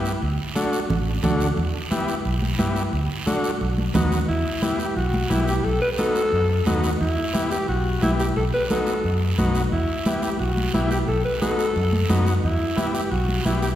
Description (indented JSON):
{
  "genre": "latin, cumbia",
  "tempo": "177 BPM",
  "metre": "4/4",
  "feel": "straight",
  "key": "E minor, E harmonic minor from 4.3 s",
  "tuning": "A4 = 438 Hz",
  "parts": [
    { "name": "overdriven combo organ", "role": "accompaniment", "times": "0.0-13.7 s", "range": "A3 to G4", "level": "-27 LUFS", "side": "left 1 dB", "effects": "none" },
    { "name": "fingered electric bass", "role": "bass", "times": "0.0-13.7 s", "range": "A1 to G2", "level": "-24 LUFS", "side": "equal", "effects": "none" },
    { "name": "guiro", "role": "percussion", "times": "0.1-13.8 s", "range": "none", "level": "-34 LUFS", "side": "right 4 dB", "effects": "none" },
    { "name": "congas", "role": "percussion", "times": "0.6-13.6 s", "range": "none", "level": "-27 LUFS", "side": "equal", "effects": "none" },
    { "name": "growling alto saxophone", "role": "melody", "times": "4.3-13.7 s", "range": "E4 to B4", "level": "-25 LUFS", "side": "left 1 dB", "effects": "none" }
  ],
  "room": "wet concert hall reverb, RT60 1.9 s",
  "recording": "recorded in a church or concert hall",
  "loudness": "-20 LUFS",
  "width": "side -12 dB against mid",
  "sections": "0.0-4.3 A section; 4.3-13.8 B section",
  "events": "none",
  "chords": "0.2 D; 1.6 Em; 2.9 D; 3.6 B; 4.3 Em; 5.6 B7; 7.0 Em; 8.4 B7; 9.7 Em; 11.1 B7; 12.4 Em"
}